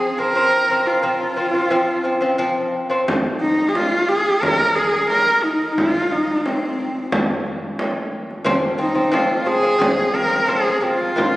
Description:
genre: mongolian traditional, Mongolian folk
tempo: 89 BPM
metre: 4/4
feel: straight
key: F yu mode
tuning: A4 = 439 Hz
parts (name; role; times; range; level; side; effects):
- rich horsehead fiddle; melody; 0.0-11.4 s; C4 to Bb4; -18 LUFS; equal; none
- lute; arpeggios; 0.0-3.0, 8.4-11.4 s; F3 to F4; -20 LUFS; equal; none
- frame drum; percussion; 3.1-11.3 s; none; -23 LUFS; equal; none
room: wet concert hall reverb, RT60 2.6 s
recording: recorded on a phone in the room, studio reverb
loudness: -16 LUFS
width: side -17 dB against mid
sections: 0.0-3.1 A section; 3.1-11.4 B section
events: none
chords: 0.0 F5; 3.1 N.C.; 8.5 F5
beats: | 0.35 1.03 1.71 2.39 | 3.07 3.75 4.42 5.10 | 5.77 6.45 7.12 7.79 | 8.47 9.14 9.82 10.49 | 11.16

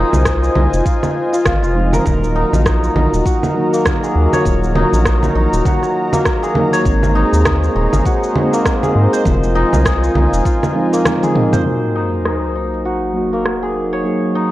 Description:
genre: organic downtempo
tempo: 100 BPM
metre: 4/4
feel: swing 58% on 16ths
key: Eb dorian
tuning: A4 = 437 Hz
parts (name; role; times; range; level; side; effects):
- warm analog pad; sustained chords; 0.0-14.5 s; Gb3 to Bb5; -21 LUFS; equal; chorus, sidechain pumping
- santur; arpeggios; 0.0-14.5 s; Bb3 to Db5; -19 LUFS; left 2 dB; low-pass filter, tape echo
- round analog bass; bass; 0.0-10.4 s; Eb1 to Ab2; -15 LUFS; equal; tube saturation, sidechain pumping
- organic electronic drum kit; drums; 0.1-14.3 s; cabasa, congas, rim click, toms; -20 LUFS; right 1 dB; low-pass filter on perc, low-pass filter on snare, low-pass filter on toms, low-pass filter on room
- electronic kick drum; drums; 0.3-10.6 s; none; -18 LUFS; equal; none
- mellow tine electric piano; accompaniment; 1.7-14.5 s; Eb3 to Ab4; -21 LUFS; right 2 dB; sidechain pumping, tape echo
- sub drop; sound effects; 11.7-14.1 s; none; -25 LUFS; equal; none
room: light reverb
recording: dry, gritty hardware recording, cassette tape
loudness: -13 LUFS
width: side -15 dB against mid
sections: 0.0-11.7 A section; 11.7-14.5 B section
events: drum fill 11.1-11.7; impact 11.7-14.1; filter sweep on santur 11.7-14.5; filter sweep on analog synth pad 11.7-14.5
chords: 0.0 Fm7; 2.1 Ebm; 6.9 Abadd9; 9.3 Fm7; 11.7 Ebm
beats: 0.25 0.85 1.45 | 2.05 2.65 3.25 3.85 | 4.45 5.05 5.65 6.25 | 6.85 7.45 8.05 8.65 | 9.25 9.85 10.45 11.05 | 11.65 12.25 12.85 13.45 | 14.05

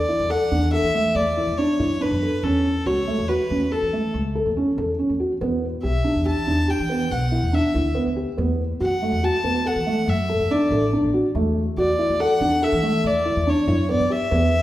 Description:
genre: contemporary instrumental, contemporary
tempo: 141 BPM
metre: 7/4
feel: straight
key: unclear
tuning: A4 = 440 Hz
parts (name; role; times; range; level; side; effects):
- bright violin; melody; 0.0-14.6 s; A4 to A5; -24 LUFS; left 1 dB; none
- upright bass; bass; 0.0-14.6 s; A1 to E3; -25 LUFS; equal; none
- felt-muted upright piano; arpeggios; 0.1-14.5 s; A3 to A4; -22 LUFS; equal; none
room: wet recital hall reverb, RT60 1.5 s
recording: heard from further back in the room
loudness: -19 LUFS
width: side -14 dB against mid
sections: 0.0-14.6 A section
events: none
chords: 0.0 Asus4/E; 2.4 F#m (rootless); 5.4 Em7; 8.4 B7(no3)/E; 11.3 Asus4/E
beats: 0.30 0.73 1.16 1.58 2.01 | 2.44 2.86 3.29 3.71 4.14 4.57 4.99 | 5.42 5.84 6.26 6.69 7.11 7.54 7.96 | 8.38 8.81 9.23 9.65 10.08 10.50 10.92 | 11.35 11.77 12.20 12.62 13.04 13.47 13.89 | 14.32

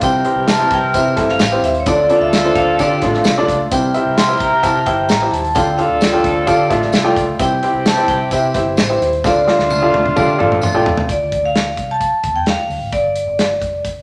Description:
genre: uptempo 1960s-style soul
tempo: 130 BPM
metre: 4/4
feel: straight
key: D minor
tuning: A4 = 438 Hz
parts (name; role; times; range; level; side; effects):
- vibraphone with medium hard mallets; melody; 0.0-13.8 s; C5 to C6; -20 LUFS; equal; none
- warm horn section; second line; 0.0-10.8 s; E3 to Bb4; -23 LUFS; equal; none
- warm upright piano; accompaniment; 0.0-11.0 s; C3 to G5; -20 LUFS; equal; none
- vintage muted fingered electric bass; bass; 0.0-13.9 s; F1 to D3; -28 LUFS; equal; none
- natural country drum kit; drums; 0.0-14.0 s; hi-hat, kick drum, snare drum, toms; -22 LUFS; equal; none
- tambourine; percussion; 0.0-10.7 s; none; -35 LUFS; equal; none
- electric guitar through a small old amp; riff; 2.6-7.4, 10.2-11.1 s; A3 to A4; -26 LUFS; equal; none
room: wet large studio reverb, RT60 1.1 s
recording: none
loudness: -15 LUFS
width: mono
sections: 0.0-11.1 A section; 11.1-14.0 B section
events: drum fill 9.2-11.1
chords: 0.0 C; 1.9 Dm; 3.7 C; 5.6 Dm; 7.4 C; 9.2 Dm; 12.9 G5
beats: | 0.02 0.48 0.94 1.40 | 1.87 2.33 2.79 3.25 | 3.71 4.17 4.63 5.09 | 5.55 6.01 6.47 6.94 | 7.40 7.86 8.32 8.78 | 9.24 9.70 10.16 10.62 | 11.08 11.54 12.01 12.47 | 12.93 13.39 13.86

